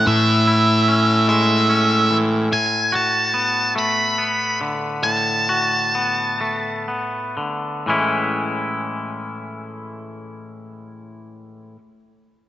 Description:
rock; 39-49 BPM (dotted quarters); 6/8; straight; A major; A4 = 441 Hz
octave-fuzz lead guitar; melody; 0.0-6.8 s; E5 to B5; -19 LUFS; equal; distortion, slapback echo
twangy electric guitar; arpeggios; 0.0-11.8 s; A2 to F#4; -23 LUFS; left 1 dB; slapback echo
fuzz picked electric bass; bass; 0.0-2.5 s; A2; -17 LUFS; equal; overdrive
moderate lush hall reverb, RT60 3.1 s; nothing above 7.8 kHz; -17 LUFS; side -13 dB against mid
0.0-7.9 A section; 7.9-10.9 B section
slowing down 2.5-7.9
0.0 Amaj7; 2.5 Bm7/A; 7.9 Amaj7

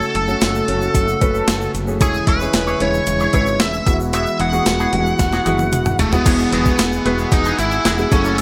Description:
1980s-style pop; 113 BPM; 4/4; straight; A4 = 440 Hz
bluesy overdriven lead guitar; melody; 0.0-8.4 s; A3 to F#5; -22 LUFS; equal; distortion
warm concert grand piano; accompaniment; 0.0-8.4 s; E3 to B4; -25 LUFS; equal
warm analog pad; sustained chords; 0.0-8.4 s; C#3 to E6; -29 LUFS; equal; chorus
tube shaker; percussion; 0.0-8.4 s; -40 LUFS; equal
woody fretless electric bass; bass; 0.1-8.4 s; E1 to G#1; -25 LUFS; equal
clean 12-bit digital drum machine; drums; 0.1-8.4 s; crash cymbal, hi-hat, kick drum, snare drum, tambourine, toms; -21 LUFS; equal; overdrive
electric guitar with an envelope filter; riff; 2.0-8.4 s; B3 to C#5; -30 LUFS; equal; lush chorus, delay
cranked stack guitar; accompaniment; 6.2-8.4 s; E2 to F#3; -34 LUFS; equal
moderate plate reverb, RT60 2.5 s; bright 1980s-style digital production; -17 LUFS; mono
0.0-6.3 A section; 6.3-8.4 B section
drum fill 5.2-6.3
0.0 F#m; 2.0 C#m/E; 3.9 Eadd9

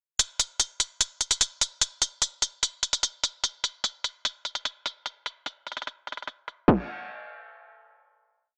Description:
hip hop; 148 BPM; 4/4; half-time
trap drum kit; drums; 0.2-6.8 s; crash cymbal, hi-hat, kick drum; -24 LUFS; equal
little or no reverb; low-pass filter, small speaker sound; -28 LUFS; mono
0.2-6.7 breakdown; 6.7-8.6 final hit

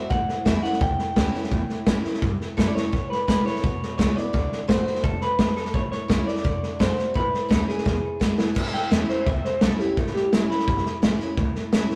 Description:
rockabilly; 170 BPM; 4/4; straight; A mixolydian; A4 = 438 Hz
electric guitar through a small old amp; melody; 0.0-10.8 s; E4 to G5; -30 LUFS; equal; tape echo
picked steel-string acoustic guitar; accompaniment; 0.0-12.0 s; E2 to F#4; -32 LUFS; equal
upright bass; bass; 0.1-11.9 s; F#1 to B2; -34 LUFS; equal
vintage drum kit; drums; 0.1-11.9 s; crash cymbal, hi-hat, kick drum, snare drum; -26 LUFS; equal
moderate stone room reverb, RT60 1.3 s; rough rehearsal-room recording, tube saturation; -23 LUFS; mono
0.0-8.6 A section; 8.6-12.0 B section
drum fill 2.7, 7.9-8.6; clean electric guitar solo 8.6-12.0
0.1 A7; 2.9 E7; 4.3 D7; 5.7 A7; 6.5 D7; 7.2 A7; 7.9 E7; 8.6 A7

